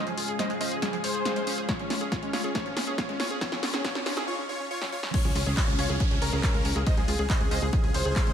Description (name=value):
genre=uplifting trance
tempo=139 BPM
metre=4/4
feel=straight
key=unclear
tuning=A4 = 441 Hz
part: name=supersaw chords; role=melody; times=0.0-8.3 s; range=Db4 to Eb5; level=-32 LUFS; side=equal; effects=sidechain pumping, low-pass filter, tape echo
part: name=bright concert grand piano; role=second line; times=0.0-8.3 s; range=Db4 to Eb5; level=-38 LUFS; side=equal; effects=vintage 12-bit sampler grit, sidechain pumping, low-pass filter, tape echo
part: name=analog string pad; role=sustained chords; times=0.0-8.3 s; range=Ab3 to F5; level=-36 LUFS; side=left 2 dB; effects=ensemble chorus, sidechain pumping
part: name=riser and downlifter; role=sound effects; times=2.7-8.3 s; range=none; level=-39 LUFS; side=equal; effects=none
part: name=analog pluck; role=arpeggios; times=0.1-8.3 s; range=F3 to F5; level=-36 LUFS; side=right 3 dB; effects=chorus, sidechain pumping, tape echo
part: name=punchy analog drum machine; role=drums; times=0.1-8.3 s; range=crash cymbal, handclaps, hi-hat, snare drum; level=-32 LUFS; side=left 1 dB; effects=none
part: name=electronic kick drum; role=drums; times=1.7-8.2 s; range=none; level=-27 LUFS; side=equal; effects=none
part: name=plucky analog bass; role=bass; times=5.2-8.3 s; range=Db2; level=-29 LUFS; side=equal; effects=tube saturation, sidechain pumping
room=light reverb, digital ambience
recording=high-pass filter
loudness=-25 LUFS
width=side -9 dB against mid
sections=0.0-5.1 A section; 5.1-8.3 B section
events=build-up 0.0-5.1; drum fill 0.0-4.3, 4.8-5.1; filter sweep on supersaw synth 0.0-5.1; filter sweep on grand piano 0.0-5.1; break 4.3-5.1; drop 5.1-8.3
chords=0.0 Db